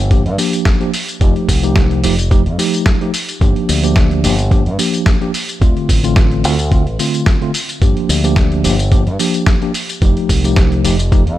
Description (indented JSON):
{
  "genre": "nu-disco, nu disco",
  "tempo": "109 BPM",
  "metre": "4/4",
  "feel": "swing 54% on 16ths",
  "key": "G minor",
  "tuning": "A4 = 440 Hz",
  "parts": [
    { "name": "fingered electric bass with an envelope filter", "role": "bass", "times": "0.0-11.4 s", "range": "F1 to G2", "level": "-16 LUFS", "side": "equal", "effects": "none" },
    { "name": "mellow tine electric piano", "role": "accompaniment", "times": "0.1-11.2 s", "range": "D3 to G4", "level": "-17 LUFS", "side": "equal", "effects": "medium stereo tremolo, analog delay" },
    { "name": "dusty soul sampler-style drum kit", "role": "drums", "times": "0.1-11.4 s", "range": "hi-hat, snare drum, tambourine", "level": "-20 LUFS", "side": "equal", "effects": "small room ambience" },
    { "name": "electronic kick drum", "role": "drums", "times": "0.1-11.2 s", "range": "none", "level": "-13 LUFS", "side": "equal", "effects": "small room ambience" }
  ],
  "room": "little or no reverb",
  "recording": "none",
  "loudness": "-12 LUFS",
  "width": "side -14 dB against mid",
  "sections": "0.0-11.4 A section",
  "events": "none",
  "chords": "0.0 Gm7; 1.2 F9; 3.4 Gm7; 5.6 Dm7; 7.8 Gm7; 10.0 F9",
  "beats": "0.11 0.66 | 1.21 1.76 2.31 2.86 | 3.41 3.96 4.51 5.06 | 5.62 6.17 6.72 7.27 | 7.82 8.37 8.92 9.47 | 10.02 10.57 11.12"
}